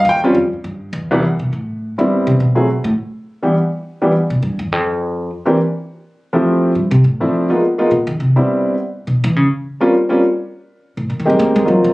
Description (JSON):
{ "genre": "jazz piano trio", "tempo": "207 BPM", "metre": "4/4", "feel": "swing 61% on 8ths", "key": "C major", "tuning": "A4 = 441 Hz", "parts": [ { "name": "clear upright piano", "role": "melody", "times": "0.0-11.9 s", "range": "C2 to G5", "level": "-14 LUFS", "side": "equal", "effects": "plate reverb" }, { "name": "upright bass", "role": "bass", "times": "0.0-11.9 s", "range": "Eb2 to Bb3", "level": "-16 LUFS", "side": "equal", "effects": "none" } ], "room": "moderate club reverb, RT60 0.7 s", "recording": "recorded on a phone in the room, club reverb, compression", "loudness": "-14 LUFS", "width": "side -20 dB against mid", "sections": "0.0-1.2 A section; 1.2-10.5 A section; 10.5-11.9 A section", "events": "upright piano solo 0.0-1.2; upright bass solo 1.2-11.9", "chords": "0.1 Ebadd9; 0.6 G5; 1.2 Cmaj9; 2.4 N.C.; 3.0 Em; 4.7 N.C.; 5.9 Fmaj9; 7.0 Dm7; 7.6 Bbsus4; 8.2 Cmaj9; 9.3 N.C.; 10.5 Abmaj9" }